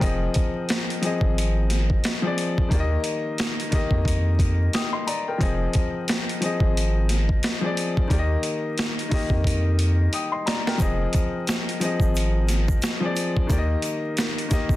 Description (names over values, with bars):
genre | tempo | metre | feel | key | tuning
hip hop, boom-bap hip-hop | 89 BPM | 4/4 | swing 58% on 16ths | F dorian | A4 = 438 Hz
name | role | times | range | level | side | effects
warm upright piano | accompaniment | 0.0-14.8 s | Eb3 to Eb6 | -26 LUFS | left 2 dB | cassette tape, high-pass filter, low-pass filter
round analog bass | bass | 0.0-14.8 s | F1 to F2 | -22 LUFS | equal | none
boom bap sampler-style drum kit | drums | 0.0-14.8 s | hi-hat, kick drum, snare drum | -24 LUFS | equal | none
egg shaker | percussion | 10.8-14.8 s | none | -42 LUFS | right 10 dB | none
room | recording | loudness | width
digital ambience | dense, heavily limited modern master, vinyl crackle | -21 LUFS | side -16 dB against mid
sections
0.0-14.8 A section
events
drum fill 9.5-10.8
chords
0.0 Fm7; 2.7 Eb; 5.4 Fm7; 8.1 Eb; 10.8 Fm7; 13.5 Eb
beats
| 0.01 0.69 1.36 2.04 | 2.71 3.38 4.06 4.73 | 5.41 6.08 6.76 7.43 | 8.10 8.78 9.45 10.13 | 10.80 11.47 12.15 12.82 | 13.50 14.17